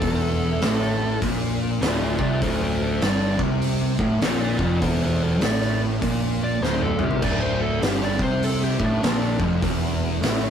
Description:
stoner and doom metal; 100 BPM; 4/4; swing 62% on 8ths; D minor; A4 = 438 Hz
fuzz lead guitar; melody; 0.0-9.4 s; D4 to D5; -28 LUFS; equal; distortion
thick fuzz guitar; riff; 0.0-10.5 s; D2 to C3; -24 LUFS; equal; distortion
picked electric bass; bass; 0.0-10.5 s; D1 to C2; -26 LUFS; equal; tube saturation
oversized low-tuned drum kit; drums; 0.0-10.4 s; crash cymbal, hi-hat, kick drum, snare drum, toms; -26 LUFS; equal
moderate studio ambience, RT60 0.5 s; rough rehearsal-room recording, warm saturation; -20 LUFS; side -8 dB against mid
0.0-10.5 A section
lead electric guitar solo 0.0-10.5; drum fill 6.6-7.2
0.0 D5

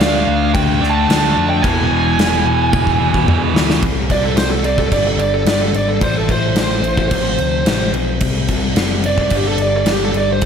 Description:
hard rock; 109 BPM; 4/4; straight; A4 = 440 Hz
bluesy overdriven lead guitar; melody; 0.0-10.4 s; G4 to A5; -18 LUFS; right 3 dB; distortion, slapback echo
scooped high-gain guitar; riff; 0.0-3.8 s; E2 to D4; -20 LUFS; right 8 dB; distortion
sludgy distorted guitar; riff; 0.0-10.5 s; E2 to D4; -21 LUFS; left 10 dB; overdrive, slapback echo
overdriven picked electric bass; bass; 0.0-10.5 s; E1 to F2; -21 LUFS; equal
gated 80s drum kit; drums; 0.0-10.5 s; crash cymbal, kick drum, snare drum, toms; -18 LUFS; equal
moderate lush hall reverb, RT60 2.7 s; big arena sound; -13 LUFS; side -7 dB against mid
0.0-3.8 A section; 3.8-10.5 B section
drum fill 2.7-3.8; lead electric guitar solo 3.8-10.5
0.0 Dm; 1.6 E; 3.8 C5; 4.9 G5; 6.0 Am; 7.1 F/A; 8.2 C5; 9.3 G5

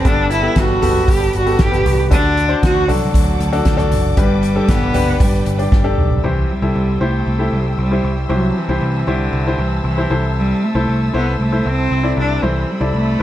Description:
piano-driven pop; 116 BPM; 4/4; straight; A4 = 440 Hz
rich cello; melody; 0.0-13.2 s; D3 to G4; -19 LUFS; right 1 dB
bright concert grand piano; accompaniment; 0.0-13.2 s; G2 to D5; -21 LUFS; left 3 dB
warm studio string section; sustained chords; 0.0-13.2 s; A4 to E6; -29 LUFS; equal
soft-mallet drum kit; drums; 0.0-6.2 s; hi-hat, kick drum, snare drum, toms; -17 LUFS; equal
picked electric bass; bass; 0.1-13.2 s; F#1 to D2; -19 LUFS; equal
light reverb; dark, warm production; -14 LUFS; side -13 dB against mid
0.0-6.2 A section; 6.2-13.2 B section
drum fill 5.7-6.2
0.0 Gadd9; 2.1 D; 4.2 G; 6.2 C; 10.1 Am/C

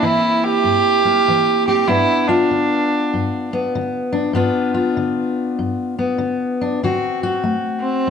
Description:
acoustic country blues, solo or duo; 97 BPM; 4/4; swing 64% on 8ths; G mixolydian; A4 = 443 Hz
dark fiddle; melody; 0.0-3.5, 7.8-8.1 s; C4 to G4; -16 LUFS; right 3 dB
fingerpicked steel-string acoustic guitar; accompaniment; 0.0-8.1 s; G2 to F#4; -18 LUFS; left 3 dB
wet studio reverb, RT60 0.8 s; heard from further back in the room; -16 LUFS; side -7 dB against mid
0.0-8.1 A section
0.0 C7; 1.9 G7; 6.8 D7

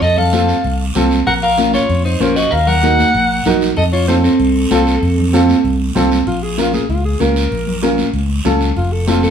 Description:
latin, cumbia; 192 BPM; 4/4; straight; Bb harmonic minor; A4 = 443 Hz
warm alto saxophone; melody; 0.0-9.3 s; F4 to Gb5; -18 LUFS; equal
clean electric guitar; second line; 0.0-5.9 s; C4 to Bb4; -19 LUFS; equal; wide subtle chorus
fingered electric bass; bass; 0.0-9.3 s; F1 to F2; -17 LUFS; equal
guiro; percussion; 0.0-9.3 s; -27 LUFS; right 3 dB
congas; percussion; 0.2-9.3 s; -22 LUFS; left 3 dB
clear upright piano; accompaniment; 0.3-9.3 s; C4 to C5; -17 LUFS; right 2 dB
wet studio reverb, RT60 0.8 s; heard from further back in the room; -12 LUFS; side -8 dB against mid
0.0-6.3 A section; 6.3-9.3 B section
alto saxophone solo 6.3-9.3
0.0 F; 1.3 Bbm; 2.5 Ebm; 3.8 F; 6.3 Bbm; 8.8 F

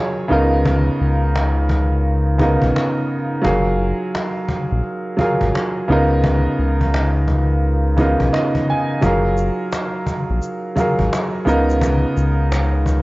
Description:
lo-fi hip hop; 86 BPM; 4/4; swing 64% on 16ths; F# major; A4 = 441 Hz
warm upright piano; accompaniment; 0.0-13.0 s; C#3 to G#5; -18 LUFS; right 1 dB; cassette tape
round analog bass; bass; 0.3-13.0 s; F#1 to C#2; -18 LUFS; equal; tube saturation
cajon; drums; 0.3-13.0 s; -23 LUFS; left 1 dB
tube shaker; percussion; 9.0-13.0 s; -43 LUFS; left 4 dB
light reverb; worn, warbling old tape, cassette tape, warbly pitch drift, nothing above 7.7 kHz; -15 LUFS; side -21 dB against mid
0.0-13.0 A section
upright piano fill 8.0-9.0
0.3 C#13; 3.4 F#maj9; 5.9 C#13; 9.0 F#maj9; 11.5 C#13

